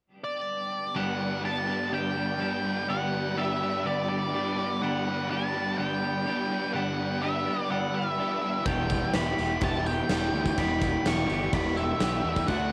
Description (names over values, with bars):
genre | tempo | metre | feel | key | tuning
rock, shoegaze and dream pop | 125 BPM | 4/4 | straight | unclear | A4 = 439 Hz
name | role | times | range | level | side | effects
octave-fuzz lead guitar | melody | 0.2-12.7 s | D5 to C#6 | -34 LUFS | equal | distortion, cassette tape, tape echo
mellow brass ensemble | sustained chords | 0.9-12.7 s | D4 to B5 | -42 LUFS | equal | cassette tape
overdriven semi-hollow guitar | riff | 0.9-12.7 s | E2 to G4 | -35 LUFS | equal | reverse reverb, cassette tape
raw garage guitar | riff | 0.9-12.7 s | D3 to G4 | -33 LUFS | equal | overdrive, lush chorus, cassette tape
fuzz fingered electric bass | bass | 8.7-12.7 s | E1 to E2 | -34 LUFS | equal | overdrive
huge arena drum kit | drums | 8.7-12.6 s | crash cymbal, kick drum, snare drum | -34 LUFS | equal | none
tambourine | percussion | 8.7-12.5 s | none | -52 LUFS | equal | none
room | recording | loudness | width
light reverb, small room ambience | home recording on cassette | -28 LUFS | mono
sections
1.0-12.7 A section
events
none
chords
0.0 N.C.; 1.0 Gmaj7; 8.7 Em